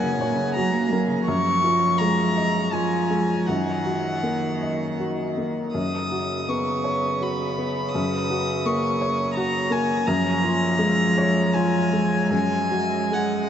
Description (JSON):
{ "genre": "neoclassical piano and strings", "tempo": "75-85 BPM", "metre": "3/4", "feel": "rubato", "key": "F# major", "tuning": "A4 = 443 Hz", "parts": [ { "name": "rich violin", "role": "melody", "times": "0.0-13.5 s", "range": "F#5 to D#6", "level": "-25 LUFS", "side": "left 2 dB", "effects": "none" }, { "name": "rich cello", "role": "second line", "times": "0.0-13.5 s", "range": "A#2 to A#3", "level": "-26 LUFS", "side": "right 3 dB", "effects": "none" }, { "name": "clear upright piano", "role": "accompaniment", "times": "0.0-13.5 s", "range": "F#2 to D#5", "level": "-24 LUFS", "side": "left 1 dB", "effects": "none" } ], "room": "wet huge ambient reverb, RT60 6.9 s", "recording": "in a vast, echoing space, nothing above 8.0 kHz", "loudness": "-20 LUFS", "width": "side -9 dB against mid", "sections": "0.0-13.5 A section", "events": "none", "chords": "0.0 F#; 1.3 C#add9/F#; 3.5 D#m/F#; 5.8 Badd9/F#; 7.9 F#; 10.1 C#/F#; 12.3 F#sus2" }